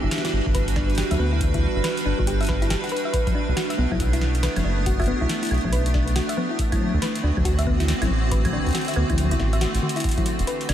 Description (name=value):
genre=IDM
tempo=139 BPM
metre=4/4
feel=swing 62% on 16ths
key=unclear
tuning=A4 = 442 Hz
part: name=icy glass pad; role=sustained chords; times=0.0-10.7 s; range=D3 to B4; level=-27 LUFS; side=right 2 dB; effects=chorus, built-in reverb, sidechain pumping
part: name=thumb-piano-like synth pluck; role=arpeggios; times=0.0-10.7 s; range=B3 to E5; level=-29 LUFS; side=left 2 dB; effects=chorus, tape echo
part: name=round analog bass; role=bass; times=0.0-10.7 s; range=E1 to D2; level=-22 LUFS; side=equal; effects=tube saturation
part: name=booming analog drum machine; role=drums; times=0.1-10.7 s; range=claves, congas, hi-hat, snare drum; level=-29 LUFS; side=left 2 dB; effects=ping-pong delay
part: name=electronic kick drum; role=drums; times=0.5-10.2 s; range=none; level=-26 LUFS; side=equal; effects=none
room=light reverb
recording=none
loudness=-20 LUFS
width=side -11 dB against mid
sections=0.0-10.0 A section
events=drum fill 9.8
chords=0.0 Gmaj7; 3.1 Bm7; 6.6 D7; 10.0 Em9